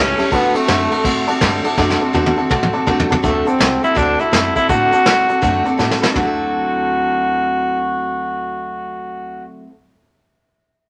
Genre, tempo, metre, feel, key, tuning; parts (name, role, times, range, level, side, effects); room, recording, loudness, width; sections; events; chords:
rockabilly; 164 BPM; 4/4; swing 63% on 8ths; D mixolydian; A4 = 439 Hz
breathy tenor saxophone; melody; 0.0-9.4 s; A3 to F#4; -20 LUFS; equal
honky-tonk upright piano; accompaniment; 0.0-9.5 s; C#5 to C6; -27 LUFS; equal
picked steel-string acoustic guitar; accompaniment; 0.0-9.8 s; A2 to A4; -22 LUFS; equal
upright bass; bass; 0.0-9.4 s; A1 to A2; -29 LUFS; equal
vintage brush drum kit; drums; 0.2-6.3 s; hi-hat, kick drum, ride cymbal, snare drum, toms; -21 LUFS; equal
moderate studio reverb, RT60 0.9 s; -16 LUFS; mono
0.0-3.2 A section; 3.2-6.2 B section; 6.2-9.1 C section
drum fill 1.8-3.2, 5.8-6.2
0.3 D7; 6.2 D9